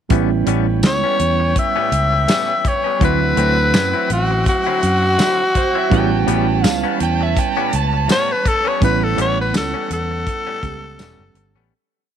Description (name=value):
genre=straight-eighth soul blues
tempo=83 BPM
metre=4/4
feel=swing 56% on 16ths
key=A mixolydian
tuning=A4 = 443 Hz
part: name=overdriven reed electric piano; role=accompaniment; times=0.1-11.7 s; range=F#3 to G4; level=-23 LUFS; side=right 14 dB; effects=harmonic tremolo
part: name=bright horn section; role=sustained chords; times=0.1-11.7 s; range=C4 to A5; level=-29 LUFS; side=equal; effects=none
part: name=direct-recorded clean electric guitar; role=stabs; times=0.1-11.7 s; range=A2 to E4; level=-26 LUFS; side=left 14 dB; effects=none
part: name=fingered electric bass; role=bass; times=0.1-11.7 s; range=E1 to F#2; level=-20 LUFS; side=left 1 dB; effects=none
part: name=damped 70s drum kit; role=drums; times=0.1-11.5 s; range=hi-hat, kick drum, snare drum, tambourine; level=-20 LUFS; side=equal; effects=none
part: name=raspy tenor saxophone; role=melody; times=0.9-11.7 s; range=F#4 to E5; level=-18 LUFS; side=left 1 dB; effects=none
part: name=overdriven slide guitar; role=second line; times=5.6-8.1 s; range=C5 to A5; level=-23 LUFS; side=right 12 dB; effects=none
room=light reverb, small room ambience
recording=1960s-style stereo with parts hard left and right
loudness=-14 LUFS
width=side -9 dB against mid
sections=0.1-11.7 head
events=fade-out 8.8-11.7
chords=0.1 A9; 3.0 D9; 5.9 A9